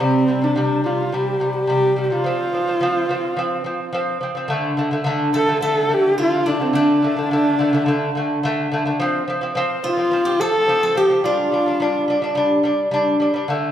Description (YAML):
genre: mongolian traditional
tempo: 107 BPM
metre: 4/4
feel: straight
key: unclear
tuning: A4 = 440 Hz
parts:
  - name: warm horsehead fiddle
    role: melody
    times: 0.0-12.4 s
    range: C4 to A4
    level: -19 LUFS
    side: equal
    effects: none
  - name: lute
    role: arpeggios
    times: 0.0-13.7 s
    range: C3 to D4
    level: -20 LUFS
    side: equal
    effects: none
  - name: steel-string zither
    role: second line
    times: 5.3-13.7 s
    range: D4 to A4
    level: -25 LUFS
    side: right 1 dB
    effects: none
room: wet recital hall reverb, RT60 1.6 s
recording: none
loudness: -17 LUFS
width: side -10 dB against mid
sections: 0.0-4.5 A section; 4.5-13.7 B section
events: none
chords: 0.0 C5; 2.3 F5; 4.5 D5; 9.0 F5; 11.2 G5